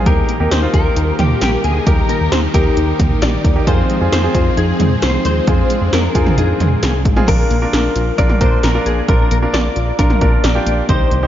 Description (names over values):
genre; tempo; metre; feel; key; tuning
synth-pop; 133 BPM; 4/4; straight; Bb mixolydian; A4 = 440 Hz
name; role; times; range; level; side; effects
direct-recorded clean electric guitar; melody; 0.0-11.3 s; G4 to D5; -21 LUFS; left 2 dB; ensemble chorus, analog delay
clear baby grand piano; accompaniment; 0.0-11.3 s; Bb3 to C5; -22 LUFS; right 1 dB; none
string machine, violas; sustained chords; 0.1-7.3 s; Eb3 to Bb4; -22 LUFS; left 1 dB; ensemble chorus
soft round pluck; arpeggios; 0.1-11.3 s; Eb3 to G4; -24 LUFS; left 3 dB; chorus, analog delay
round analog bass; bass; 0.1-11.3 s; Ab1 to F2; -18 LUFS; equal; none
80s electronic pad drums; drums; 0.1-11.2 s; crash cymbal, hi-hat, kick drum, snare drum, toms; -16 LUFS; equal; gated reverb on snare and toms
room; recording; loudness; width
moderate cathedral reverb, RT60 5.8 s; dreamy mix soaked in reverb, nothing above 7.5 kHz; -12 LUFS; side -11 dB against mid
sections
0.0-7.3 A section; 7.3-11.3 B section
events
none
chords
0.1 Eb; 3.7 Fm7; 7.3 Bb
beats
| 0.06 0.51 0.96 1.42 | 1.87 2.32 2.77 3.22 | 3.67 4.12 4.57 5.03 | 5.48 5.93 6.38 6.83 | 7.28 7.73 8.18 8.63 | 9.09 9.54 9.99 10.44 | 10.89